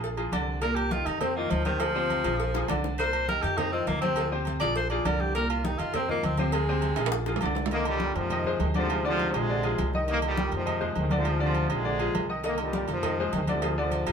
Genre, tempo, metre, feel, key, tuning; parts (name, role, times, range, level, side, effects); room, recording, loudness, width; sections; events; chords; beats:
latin, salsa; 203 BPM; 4/4; straight; A4 = 440 Hz
bright baby grand piano; accompaniment; 0.0-14.1 s; Bb2 to Eb5; -31 LUFS; left 1 dB
upright bass; bass; 0.0-14.1 s; Bb1 to F2; -31 LUFS; equal
congas; percussion; 0.0-14.1 s; -35 LUFS; left 2 dB
cowbell and bongos; percussion; 0.0-7.6, 12.4-14.1 s; -36 LUFS; left 1 dB
agogo bells and timbales; percussion; 0.2-14.1 s; -35 LUFS; right 8 dB
clear tenor saxophone; melody; 0.6-7.1 s; Eb3 to D5; -29 LUFS; left 1 dB; plate reverb
bright trombone section; melody; 7.7-14.1 s; Ab2 to Bb3; -30 LUFS; left 1 dB; plate reverb
wet studio reverb, RT60 0.6 s; heard from further back in the room; -25 LUFS; side -7 dB against mid
0.0-7.7 A section; 7.7-14.1 B section
tenor saxophone solo 0.0-7.7; drum fill 2.5-3.0, 7.0-7.7
0.0 Bb9; 0.6 Cm7; 1.2 F5; 1.8 Bb9; 3.0 Cm7; 3.6 F5; 4.2 Bb9; 5.4 Cm7; 5.9 F5; 6.5 Bb9; 7.7 Cm9; 8.3 Fm7; 8.9 Dm7b5; 9.5 Bb9; 10.1 Cm9; 10.7 Fm7; 11.3 Dm7b5; 11.8 Bb9; 12.4 Cm9; 13.0 Fm7
0.03 0.33 | 0.62 0.92 1.21 1.51 | 1.80 2.10 2.40 2.69 | 2.99 3.28 3.58 3.87 | 4.17 4.46 4.76 5.06 | 5.35 5.65 5.94 6.24 | 6.53 6.83 7.12 7.42 | 7.71 8.01 8.30 8.60 | 8.89 9.19 9.48 9.78 | 10.08 10.37 10.67 10.96 | 11.26 11.55 11.85 12.15 | 12.44 12.74 13.03 13.33 | 13.63 13.92